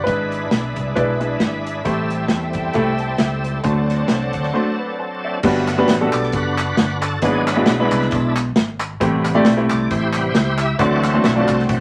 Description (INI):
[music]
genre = uptempo gospel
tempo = 134 BPM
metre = 4/4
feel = swing 55% on 8ths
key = G major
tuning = A4 = 439 Hz
[part]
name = clear grand piano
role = melody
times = 0.0-1.6 s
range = B4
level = -26 LUFS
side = equal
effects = none
[part]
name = bright tonewheel organ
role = sustained chords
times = 0.0-11.8 s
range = C3 to E5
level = -26 LUFS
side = equal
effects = slow rotary speaker, overdrive, chorus vibrato
[part]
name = warm studio string section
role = sustained chords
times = 0.0-5.4 s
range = G#4 to G5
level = -32 LUFS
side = equal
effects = none
[part]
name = clear grand piano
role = accompaniment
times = 0.1-11.8 s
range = G2 to A5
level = -22 LUFS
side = equal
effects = none
[part]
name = fingered electric bass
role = bass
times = 0.1-11.8 s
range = F#1 to E2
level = -26 LUFS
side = equal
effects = none
[part]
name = modern studio drum kit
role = drums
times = 0.1-11.8 s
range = crash cymbal, hi-hat, kick drum, snare drum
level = -23 LUFS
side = equal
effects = none
[part]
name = group handclap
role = percussion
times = 5.7-11.6 s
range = none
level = -28 LUFS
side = equal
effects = none
[sound]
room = moderate club reverb, RT60 0.5 s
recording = vinyl crackle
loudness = -19 LUFS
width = mono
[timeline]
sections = 0.0-5.4 A section; 5.4-11.8 B section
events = break 4.5-5.4; grand piano fill 4.8-5.4; tonewheel organ solo 5.4-11.8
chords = 0.1 E7/G#; 1.9 Am7; 3.6 D7; 5.4 Gmaj7; 7.2 E7/G#; 9.0 Am7; 10.8 D7